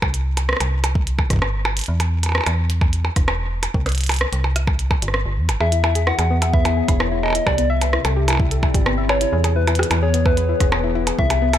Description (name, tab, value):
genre	IDM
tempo	129 BPM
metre	4/4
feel	straight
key	unclear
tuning	A4 = 444 Hz
part	metallic FM bass	bass	0.0-11.6 s	E1 to E2	-20 LUFS	equal	none
part	electronic kick drum	drums	0.0-11.3 s	none	-19 LUFS	equal	small room reverb
part	glitchy drum kit	drums	0.0-11.6 s	hi-hat, percussion blips, rim click	-23 LUFS	right 2 dB	small room reverb
part	soft struck synth lead	melody	5.6-11.6 s	B4 to F#5	-23 LUFS	left 1 dB	chorus, dub echo
part	warbly tape-like pad	sustained chords	6.2-11.6 s	C3 to D5	-26 LUFS	left 3 dB	chorus, built-in reverb
part	soft round pluck	arpeggios	5.6-11.6 s	B3 to E5	-27 LUFS	left 5 dB	chorus, tape echo
room	little or no reverb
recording	none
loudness	-16 LUFS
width	side -11 dB against mid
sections	0.0-11.6 A section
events	none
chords	0.0 C5; 1.9 N.C.; 3.7 C5; 5.6 E6; 7.5 Cadd9; 9.3 E6